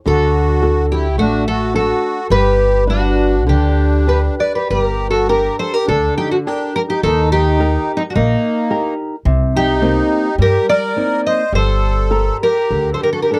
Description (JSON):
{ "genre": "fado-style ballad", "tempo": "95-109 BPM", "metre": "4/4", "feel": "rubato", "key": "G major, G minor from 4.7 s", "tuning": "A4 = 438 Hz", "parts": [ { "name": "fingerpicked twelve-string acoustic guitar", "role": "melody", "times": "0.1-13.4 s", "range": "Eb4 to Eb5", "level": "-20 LUFS", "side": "equal", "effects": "none" }, { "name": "accordion", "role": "second line", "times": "0.1-13.4 s", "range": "Bb3 to C5", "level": "-24 LUFS", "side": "equal", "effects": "light tremolo tuning" }, { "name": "flamenco guitar", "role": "accompaniment", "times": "0.1-13.4 s", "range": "C3 to B4", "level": "-23 LUFS", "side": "equal", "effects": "none" }, { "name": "upright bass", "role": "bass", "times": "0.1-12.9 s", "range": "G1 to G2", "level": "-19 LUFS", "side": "equal", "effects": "none" } ], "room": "light reverb", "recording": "dry, close 1970s-style studio recording", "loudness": "-16 LUFS", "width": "mono", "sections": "0.0-4.7 A section; 4.7-13.4 B section", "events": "none", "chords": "0.1 D; 2.3 G; 4.7 Gm; 7.0 Eb; 9.3 Cm7; 11.5 Gmadd9", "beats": "| 0.06 0.62 1.18 1.74 | 2.30 2.88 3.47 4.08 | 4.70 5.29 5.88 6.46 | 7.03 7.60 8.15 8.70 | 9.26 9.82 10.39 10.96 | 11.53 12.11 12.70 13.30" }